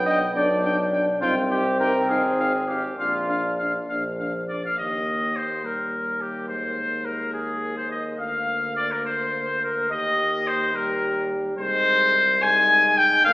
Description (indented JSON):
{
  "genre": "classical, brass quintet",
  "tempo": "70 BPM (dotted quarters)",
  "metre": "6/8",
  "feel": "rubato",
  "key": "Eb major",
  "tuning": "A4 = 439 Hz",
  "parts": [
    { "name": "clear flugelhorn", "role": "second line", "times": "0.0-13.3 s", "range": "F4 to Ab5", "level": "-29 LUFS", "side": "right 1 dB", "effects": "none" },
    { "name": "warm French horn", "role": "accompaniment", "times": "0.0-13.3 s", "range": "Bb3 to Bb4", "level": "-28 LUFS", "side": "equal", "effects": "none" },
    { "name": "warm tuba", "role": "bass", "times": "0.0-13.3 s", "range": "Ab1 to Eb2", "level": "-32 LUFS", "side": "equal", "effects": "none" },
    { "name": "bright trumpet", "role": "melody", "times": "0.1-13.3 s", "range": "G4 to Ab5", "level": "-22 LUFS", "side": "left 1 dB", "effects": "none" },
    { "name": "mellow euphonium", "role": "accompaniment", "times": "0.1-13.3 s", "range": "G3 to Eb4", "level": "-34 LUFS", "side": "equal", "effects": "none" }
  ],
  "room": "wet recital hall reverb, RT60 1.7 s",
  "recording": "heard from further back in the room, AM radio sound",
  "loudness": "-20 LUFS",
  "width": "side -21 dB against mid",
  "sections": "0.0-4.8 A section; 4.8-13.3 B section",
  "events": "none",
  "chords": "0.0 G/B; 1.2 Cm; 2.1 Fm7/Ab; 3.0 Bb; 4.8 Eb; 6.5 Abadd9/Eb; 8.2 Bb/D; 9.9 Eb; 11.6 Ab/C"
}